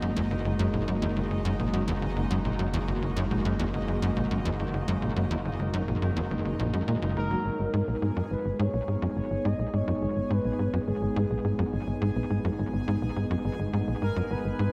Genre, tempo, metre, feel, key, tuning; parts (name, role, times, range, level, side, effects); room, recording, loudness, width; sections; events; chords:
ambient, sequencer-driven space music; 105 BPM; 4/4; straight; G# minor; A4 = 439 Hz
lush unison pad; sustained chords; 0.0-14.7 s; G#3 to F#4; -35 LUFS; equal; chorus, phaser
Celtic harp; arpeggios; 0.0-9.7 s; G#2 to D#4; -38 LUFS; equal; tape echo
tight sequencer bass; riff; 0.0-14.7 s; F#1 to A#2; -31 LUFS; equal; subtle chorus, tape echo
analog drone; bass; 0.0-14.7 s; F#1 to G#1; -38 LUFS; equal; chorus
bubbling stepped-filter texture; texture; 0.0-14.7 s; D#4 to G#5; -45 LUFS; equal; chorus, built-in reverb
expressive synth lead; melody; 7.2-14.7 s; G#4 to D#5; -37 LUFS; equal; subtle chorus, tape echo
moderate plate reverb, RT60 2.8 s; -28 LUFS; mono
0.0-7.5 A section; 7.5-14.7 B section
0.0 F#add9; 7.5 G#m